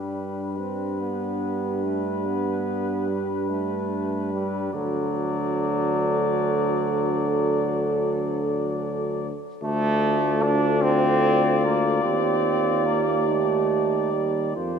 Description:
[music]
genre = classical, hymn-like piece for brass band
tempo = 48 BPM (dotted quarters)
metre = 12/8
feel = rubato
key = unclear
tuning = A4 = 436 Hz
[part]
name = mellow cornet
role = melody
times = 0.0-14.8 s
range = B4 to D5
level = -30 LUFS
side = left 7 dB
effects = none
[part]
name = mellow French horn section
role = second line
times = 0.0-14.8 s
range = G4 to Bb4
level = -28 LUFS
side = right 8 dB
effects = none
[part]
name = warm euphonium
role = accompaniment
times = 0.0-14.8 s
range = D4 to F4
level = -32 LUFS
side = left 2 dB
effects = none
[part]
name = warm trombone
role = accompaniment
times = 0.0-14.8 s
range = F3 to D4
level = -27 LUFS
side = right 2 dB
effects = none
[part]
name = clear tuba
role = bass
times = 0.0-14.8 s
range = D2 to G2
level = -27 LUFS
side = left 2 dB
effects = none
[sound]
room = wet church reverb, RT60 3.0 s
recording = minimal, uncompressed stereo recording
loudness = -21 LUFS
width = side -7 dB against mid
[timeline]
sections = 0.0-14.8 A section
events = none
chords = 0.0 G; 4.7 D; 9.6 Dm; 12.0 Ebmaj7

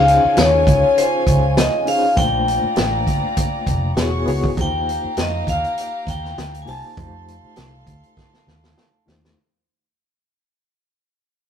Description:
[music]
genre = lush 1970s-style soul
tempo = 100 BPM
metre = 4/4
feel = swing 54% on 16ths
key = unclear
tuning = A4 = 439 Hz
[part]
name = vibraphone with hard mallets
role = melody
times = 0.0-9.0 s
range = C5 to A5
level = -18 LUFS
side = left 2 dB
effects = none
[part]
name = warm studio violin section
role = second line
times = 0.0-9.3 s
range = Db4 to C#6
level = -26 LUFS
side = equal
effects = none
[part]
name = reed electric piano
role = accompaniment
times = 0.0-9.4 s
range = A3 to C#5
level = -26 LUFS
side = left 3 dB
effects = medium tremolo
[part]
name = vintage muted fingered electric bass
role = bass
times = 0.0-9.3 s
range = E1 to F2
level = -22 LUFS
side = equal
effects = none
[part]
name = vintage drum kit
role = drums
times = 0.1-9.4 s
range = hi-hat, kick drum, snare drum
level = -21 LUFS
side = right 1 dB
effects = none
[sound]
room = moderate stone room reverb, RT60 1.3 s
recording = rough rehearsal-room recording, tube saturation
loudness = -15 LUFS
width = side -8 dB against mid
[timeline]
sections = 0.0-9.4 A section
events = fade-out 0.0-9.4; drum fill 8.2-9.4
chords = 0.0 Dbmaj7; 2.2 Bbmaj9; 4.0 E69; 4.6 Eb69; 7.0 F7

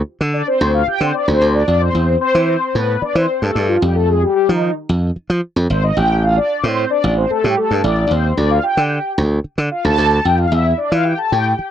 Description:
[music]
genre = early-eighties boogie funk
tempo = 112 BPM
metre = 4/4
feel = straight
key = D dorian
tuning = A4 = 439 Hz
[part]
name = glassy slap bass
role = bass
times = 0.2-11.6 s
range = Ab1 to F3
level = -16 LUFS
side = right 1 dB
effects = none
[part]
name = mellow synth brass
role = accompaniment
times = 0.3-11.7 s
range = Eb4 to A5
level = -16 LUFS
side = left 2 dB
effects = chorus
[sound]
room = little or no reverb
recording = dry, close 1970s-style studio recording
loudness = -14 LUFS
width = side -10 dB against mid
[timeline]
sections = 0.0-11.7 A section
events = analog polysynth solo 0.0-11.7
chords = 0.0 Dm; 1.9 Emadd11; 3.8 Fm; 6.0 Amadd11; 8.4 Dmadd11; 10.5 Emadd11

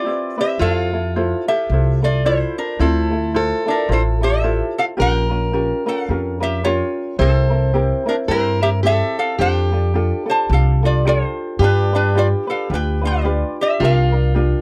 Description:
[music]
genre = Hawaiian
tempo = 109 BPM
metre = 4/4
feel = swing 58% on 8ths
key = F major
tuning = A4 = 445 Hz
[part]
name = lap resonator guitar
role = melody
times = 0.0-14.6 s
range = C4 to A5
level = -23 LUFS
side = equal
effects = none
[part]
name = fingerpicked plugged-in steel-string acoustic guitar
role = second line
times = 0.0-14.6 s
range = E4 to C5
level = -26 LUFS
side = equal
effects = none
[part]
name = ukulele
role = accompaniment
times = 0.0-14.6 s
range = C4 to C5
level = -26 LUFS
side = equal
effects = none
[part]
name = upright bass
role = bass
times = 0.6-14.5 s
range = A1 to G2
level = -20 LUFS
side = equal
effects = none
[sound]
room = light reverb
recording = dry, close 1970s-style studio recording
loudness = -18 LUFS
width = mono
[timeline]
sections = 0.6-14.6 A section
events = none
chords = 0.0 Cmaj7; 0.6 Fmaj7; 2.8 Dm9; 5.0 Bbm6; 7.2 C7; 9.4 F69; 11.6 G7; 13.8 C9sus4

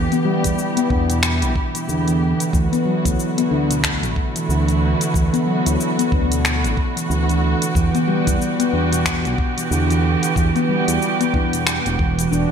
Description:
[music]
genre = organic downtempo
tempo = 92 BPM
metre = 4/4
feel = swing 60% on 16ths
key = E minor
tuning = A4 = 438 Hz
[part]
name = muted chamber string section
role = sustained chords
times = 0.0-12.5 s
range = D3 to G4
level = -24 LUFS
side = right 2 dB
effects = sidechain pumping
[part]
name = handpan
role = arpeggios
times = 0.0-12.5 s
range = B2 to E4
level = -20 LUFS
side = left 1 dB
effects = ping-pong delay
[part]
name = smooth gliding synth bass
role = bass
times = 0.0-12.5 s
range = E1 to E2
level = -21 LUFS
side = equal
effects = none
[part]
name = organic electronic drum kit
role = drums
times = 0.1-12.5 s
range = finger snaps, hi-hat, shaker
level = -24 LUFS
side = left 2 dB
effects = overdrive, gated reverb
[part]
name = electronic kick drum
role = drums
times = 0.4-12.1 s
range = none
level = -21 LUFS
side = equal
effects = none
[sound]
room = moderate lush hall reverb, RT60 1.8 s, digital ambience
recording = bright 1980s-style digital production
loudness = -16 LUFS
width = side -7 dB against mid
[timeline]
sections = 0.0-12.5 A section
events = none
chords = 0.0 Em; 2.5 D; 7.8 Em

